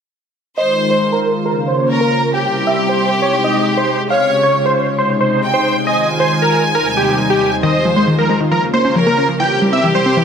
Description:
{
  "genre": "trance",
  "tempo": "136 BPM",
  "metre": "4/4",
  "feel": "straight",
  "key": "F minor",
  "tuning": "A4 = 440 Hz",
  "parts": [
    { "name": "big supersaw lead", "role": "melody", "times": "0.6-10.2 s", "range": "G4 to G5", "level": "-16 LUFS", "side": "right 1 dB", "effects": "low-pass filter, tape echo" },
    { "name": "clear symphonic violin section", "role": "second line", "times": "0.6-10.2 s", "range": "G4 to Ab5", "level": "-18 LUFS", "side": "left 1 dB", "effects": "tape echo" },
    { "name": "lush unison pad", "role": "sustained chords", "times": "0.6-10.2 s", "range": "Eb2 to Db5", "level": "-18 LUFS", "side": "equal", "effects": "chorus" },
    { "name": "wide unison pluck", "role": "arpeggios", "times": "7.6-10.2 s", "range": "Eb3 to Db4", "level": "-16 LUFS", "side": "left 1 dB", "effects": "vintage 12-bit sampler grit, tape echo" }
  ],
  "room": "moderate huge ambient reverb, RT60 6.4 s",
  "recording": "none",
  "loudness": "-12 LUFS",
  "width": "side -7 dB against mid",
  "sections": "0.6-10.2 A section",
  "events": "filter sweep on supersaw synth 0.6-10.2; filter sweep on analog synth pad 0.6-10.2",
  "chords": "0.6 Fm7; 1.5 Bbm; 2.3 C; 3.2 Ab; 4.1 Db; 5.0 Ab; 5.9 Fm7; 6.8 Cm/Eb; 7.6 Fm7; 8.5 Bbm; 9.4 C"
}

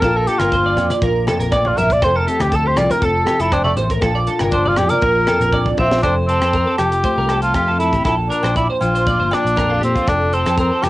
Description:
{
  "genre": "highlife guitar band",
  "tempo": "119 BPM",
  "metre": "4/4",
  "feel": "straight",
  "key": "F major",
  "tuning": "A4 = 440 Hz",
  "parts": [
    { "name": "warm cor anglais", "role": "melody", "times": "0.0-10.9 s", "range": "A3 to D5", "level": "-17 LUFS", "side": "equal", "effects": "cassette tape" },
    { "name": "nylon-string guitar", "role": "accompaniment", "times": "0.0-10.9 s", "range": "F2 to A4", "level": "-23 LUFS", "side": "left 3 dB", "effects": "cassette tape" },
    { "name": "clean electric guitar", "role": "arpeggios", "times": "0.0-10.9 s", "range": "F4 to E5", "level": "-21 LUFS", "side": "right 3 dB", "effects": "analog chorus, cassette tape" },
    { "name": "fingered electric bass", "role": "bass", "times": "0.0-10.9 s", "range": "F1 to Bb2", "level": "-21 LUFS", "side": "equal", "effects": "none" },
    { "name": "tight funk drum kit", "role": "drums", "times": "0.0-10.9 s", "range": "hi-hat, kick drum, rim click, snare drum", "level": "-24 LUFS", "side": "equal", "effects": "cassette tape" },
    { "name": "agogo bells", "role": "percussion", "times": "0.0-10.9 s", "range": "none", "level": "-30 LUFS", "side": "left 3 dB", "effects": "none" },
    { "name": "congas", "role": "percussion", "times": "0.4-5.9 s", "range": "none", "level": "-28 LUFS", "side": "left 1 dB", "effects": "none" }
  ],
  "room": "little or no reverb",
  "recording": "home recording on cassette, nothing above 10.5 kHz",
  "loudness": "-14 LUFS",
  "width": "side -17 dB against mid",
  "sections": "0.0-6.0 A section; 6.0-10.9 B section",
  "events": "cor anglais solo 0.0-6.0; drum fill 5.5-6.0",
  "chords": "0.0 Bb; 2.0 F; 4.0 Bb; 6.0 F; 8.1 Bb; 10.1 F"
}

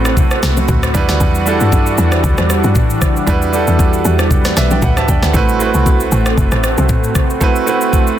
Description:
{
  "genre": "amapiano",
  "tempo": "116 BPM",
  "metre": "4/4",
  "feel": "swing 55% on 16ths",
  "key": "A dorian",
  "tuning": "A4 = 441 Hz",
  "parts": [
    { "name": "bright concert grand piano", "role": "accompaniment", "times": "0.0-8.2 s", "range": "G3 to A5", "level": "-17 LUFS", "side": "right 5 dB", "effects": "none" },
    { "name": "lush unison pad", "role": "sustained chords", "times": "0.0-8.2 s", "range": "E3 to F#4", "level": "-19 LUFS", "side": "left 1 dB", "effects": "chorus, sidechain pumping" },
    { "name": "woody log drum bass", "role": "bass", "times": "0.0-6.9 s", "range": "F#1 to G2", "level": "-16 LUFS", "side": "equal", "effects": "none" },
    { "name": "afro-pop drum kit", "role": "drums", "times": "0.1-8.2 s", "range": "kick drum, rim click, shaker, snare drum, toms", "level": "-15 LUFS", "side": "equal", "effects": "none" },
    { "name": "congas and bongos", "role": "percussion", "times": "0.2-7.3 s", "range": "none", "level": "-23 LUFS", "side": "left 3 dB", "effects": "none" }
  ],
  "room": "little or no reverb",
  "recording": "dense, heavily limited modern master",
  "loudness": "-11 LUFS",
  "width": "side -11 dB against mid",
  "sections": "0.0-8.2 A section",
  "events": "none",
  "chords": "0.0 Am69; 0.9 Em9; 5.3 Am69"
}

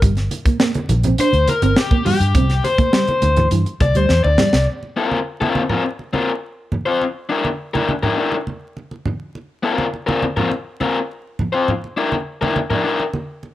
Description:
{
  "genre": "funk",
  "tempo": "103 BPM",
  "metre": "4/4",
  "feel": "straight",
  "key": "unclear",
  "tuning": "A4 = 440 Hz",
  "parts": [
    { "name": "mellow electric guitar", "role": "riff", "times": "0.0-4.5 s", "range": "E3 to D4", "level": "-22 LUFS", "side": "right 4 dB", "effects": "none" },
    { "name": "vintage muted fingered electric bass", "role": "bass", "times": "0.0-4.7 s", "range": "G1 to G2", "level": "-17 LUFS", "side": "equal", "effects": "none" },
    { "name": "crisp fusion drum kit", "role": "drums", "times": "0.0-4.7 s", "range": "hi-hat, kick drum, snare drum", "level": "-19 LUFS", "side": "equal", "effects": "none" },
    { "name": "congas", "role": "percussion", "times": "0.0-13.5 s", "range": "none", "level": "-24 LUFS", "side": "right 2 dB", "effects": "none" },
    { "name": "raw garage guitar", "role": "accompaniment", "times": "1.2-13.0 s", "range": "C4 to D5", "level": "-19 LUFS", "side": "left 3 dB", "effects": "overdrive" }
  ],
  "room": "light reverb, studio ambience",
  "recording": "vinyl crackle",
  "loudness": "-16 LUFS",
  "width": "side -14 dB against mid",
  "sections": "0.0-4.7 A section; 4.7-13.5 B section",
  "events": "overdriven electric guitar solo 0.0-4.7; drum fill 4.1-4.7",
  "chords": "0.0 Gmadd11; 2.3 Cadd9; 4.7 C7sus4; 7.0 Dsus2; 9.3 C7sus4; 11.7 Dsus2"
}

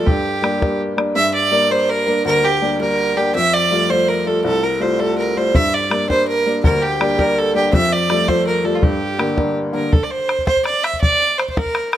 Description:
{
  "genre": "celtic folk, Celtic jig",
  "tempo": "110 BPM (dotted quarters)",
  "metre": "6/8",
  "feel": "straight",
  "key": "G dorian",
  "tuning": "A4 = 442 Hz",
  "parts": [
    { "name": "clear fiddle", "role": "melody", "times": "0.0-12.0 s", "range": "F4 to E5", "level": "-17 LUFS", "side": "right 2 dB", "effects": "none" },
    { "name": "clear upright piano", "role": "accompaniment", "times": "0.0-9.9 s", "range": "C2 to F4", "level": "-19 LUFS", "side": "left 2 dB", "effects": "none" },
    { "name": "bodhran", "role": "percussion", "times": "0.1-1.1, 5.5-12.0 s", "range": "none", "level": "-18 LUFS", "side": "equal", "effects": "none" }
  ],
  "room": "light reverb, small room ambience",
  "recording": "rough home demo mix",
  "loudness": "-15 LUFS",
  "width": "side -11 dB against mid",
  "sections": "0.0-1.2 A section; 1.2-9.9 A section; 9.9-12.0 B section",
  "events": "none",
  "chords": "0.1 Gm; 3.4 Fadd9; 5.5 Gm; 7.7 Fadd9; 8.8 Gm; 9.9 N.C."
}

